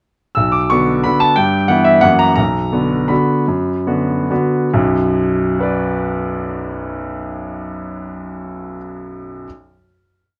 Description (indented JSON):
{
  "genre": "classical, piano waltz",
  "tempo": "135-192 BPM",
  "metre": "3/4",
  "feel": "rubato",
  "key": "B minor",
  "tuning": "A4 = 439 Hz",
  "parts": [
    { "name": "bright grand piano", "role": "solo", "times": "0.3-9.5 s", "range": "B1 to E6", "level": "-17 LUFS", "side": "equal", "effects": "none" }
  ],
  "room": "light reverb",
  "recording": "worn, warbling old tape, cassette tape, warbly pitch drift",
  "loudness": "-16 LUFS",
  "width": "mono",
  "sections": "0.4-4.7 A section; 4.7-7.3 final chord",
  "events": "slowing down 1.9-4.7",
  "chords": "0.4 Bm; 1.4 Em/G; 2.0 F#7; 2.4 Bm",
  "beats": "| 0.37 0.71 1.05 | 1.38 1.69 2.03 | 2.37 2.73 3.10 | 3.48 3.87 4.30 | 4.73 5.15 5.58 | 6.01 6.43 6.87"
}